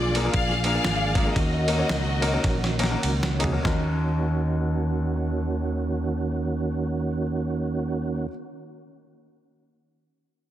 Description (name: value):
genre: uptempo gospel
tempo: 94-123 BPM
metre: 4/4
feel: swing 60% on 8ths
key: Eb minor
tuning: A4 = 441 Hz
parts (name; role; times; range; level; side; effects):
- warm studio string section; melody; 0.0-3.0 s; F4 to F5; -27 LUFS; left 1 dB; none
- warm upright piano; accompaniment; 0.0-8.3 s; Eb2 to Bb5; -31 LUFS; left 4 dB; none
- mellow tonewheel organ; sustained chords; 0.0-8.3 s; Eb3 to Ab4; -29 LUFS; right 3 dB; fast rotary speaker, chorus vibrato
- fingered electric bass; bass; 0.0-8.3 s; Ab1 to Eb2; -27 LUFS; equal; none
- dusty soul sampler-style drum kit; drums; 0.1-3.8 s; kick drum, ride cymbal, snare drum, toms; -27 LUFS; equal; none
room: light reverb, digital ambience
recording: dense, heavily limited modern master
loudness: -22 LUFS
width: side -12 dB against mid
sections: 0.0-3.7 A section; 3.7-8.8 B section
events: slowing down 0.0-3.7; drum fill 2.4-3.7; upright piano fill 2.4-3.7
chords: 0.0 Bb7; 1.4 Ebm7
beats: 0.35 0.84 | 1.36 1.89 2.45 3.03 | 3.65 4.29 4.93 5.57 | 6.21 6.85 7.49 8.13